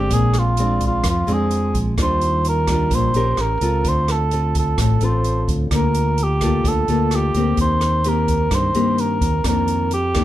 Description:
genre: bossa nova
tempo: 129 BPM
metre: 4/4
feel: straight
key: G minor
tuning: A4 = 440 Hz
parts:
  - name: dark cor anglais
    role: melody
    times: 0.0-10.2 s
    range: F4 to C5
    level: -21 LUFS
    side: right 2 dB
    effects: plate reverb
  - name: nylon-string guitar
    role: accompaniment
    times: 0.0-10.2 s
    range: F2 to Bb4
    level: -21 LUFS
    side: left 2 dB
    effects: none
  - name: fingered electric bass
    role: bass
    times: 0.0-10.2 s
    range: A1 to G2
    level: -21 LUFS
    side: equal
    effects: none
  - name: open jazz drum kit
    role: drums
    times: 0.1-10.2 s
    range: hi-hat, kick drum, rim click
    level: -25 LUFS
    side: right 1 dB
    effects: none
room: light reverb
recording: dark, warm production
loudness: -16 LUFS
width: side -13 dB against mid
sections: 0.0-10.2 A section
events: none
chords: 0.1 Bb9; 2.0 Ebmaj9; 3.4 A7b9; 3.9 Dm7; 5.7 Gm9/D; 7.6 Cm7/Eb; 9.5 F13sus4

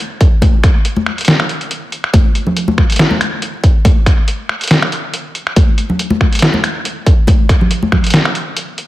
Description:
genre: dubstep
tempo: 140 BPM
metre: 4/4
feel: swing 55% on 16ths, half-time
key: none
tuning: none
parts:
  - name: electronic kick drum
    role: drums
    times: 0.2-8.0 s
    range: none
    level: -10 LUFS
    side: equal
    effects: overdrive, small room ambience
  - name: trip hop sampler-style drum kit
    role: drums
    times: 0.2-8.9 s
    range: finger snaps, hi-hat, snare drum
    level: -15 LUFS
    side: equal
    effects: small room ambience
  - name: congas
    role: percussion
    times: 0.4-8.0 s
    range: none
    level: -18 LUFS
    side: left 1 dB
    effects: dub echo
room: moderate lush hall reverb, RT60 1.7 s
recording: dreamy mix soaked in reverb, vinyl crackle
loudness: -11 LUFS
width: side -16 dB against mid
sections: 0.0-8.9 A section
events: none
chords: none

